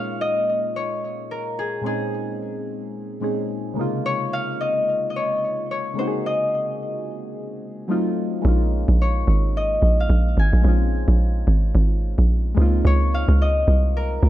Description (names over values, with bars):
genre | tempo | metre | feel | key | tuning
amapiano | 109 BPM | 4/4 | swing 58% on 16ths | Bb minor | A4 = 439 Hz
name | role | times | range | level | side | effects
concert harp | melody | 0.0-14.3 s | Ab4 to Ab5 | -24 LUFS | left 2 dB | ping-pong delay
soft electric-piano-like synth keys | accompaniment | 0.0-14.3 s | Bb2 to Ab4 | -27 LUFS | left 1 dB | chorus, phaser
hollow log drum bass | bass | 8.4-14.3 s | Ab1 to Db2 | -17 LUFS | equal | none
room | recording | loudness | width
little or no reverb | dark, warm production | -19 LUFS | side -14 dB against mid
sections
0.0-14.3 A section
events
none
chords
0.0 Bbm11; 3.8 Dbmaj13; 7.9 F7b9; 8.4 Bbm11; 12.6 Dbmaj13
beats
0.19 0.74 1.29 | 1.84 2.39 2.94 3.49 | 4.04 4.59 5.14 5.70 | 6.25 6.80 7.35 7.90 | 8.45 9.00 9.55 10.10 | 10.65 11.20 11.75 12.30 | 12.85 13.40 13.95